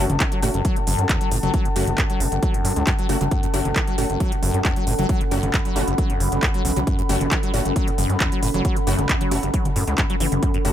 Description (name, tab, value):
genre	driving peak-time techno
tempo	135 BPM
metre	4/4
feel	straight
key	F# minor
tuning	A4 = 443 Hz
part	acid bass, saw	riff	0.0-10.7 s	F#1 to F#3	-28 LUFS	equal	wide subtle chorus, sidechain pumping, dub echo
part	rave stab	stabs	0.0-10.7 s	A3 to F#4	-29 LUFS	left 1 dB	chorus, built-in reverb, cassette tape, sidechain pumping, dub echo
part	gritty driven synth bass	bass	0.0-10.7 s	F#1 to F#2	-24 LUFS	equal	sidechain pumping
part	warbly tape-like pad	texture	0.0-10.7 s	C#4 to B5	-26 LUFS	equal	chorus, built-in reverb, sidechain pumping
part	techno drum kit	drums	0.1-10.7 s	handclaps, hi-hat, toms	-26 LUFS	equal	none
part	electronic kick drum	drums	0.2-10.5 s	none	-22 LUFS	equal	none
room	light reverb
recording	none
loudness	-18 LUFS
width	side -11 dB against mid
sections	0.0-10.7 A section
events	none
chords	0.0 F#m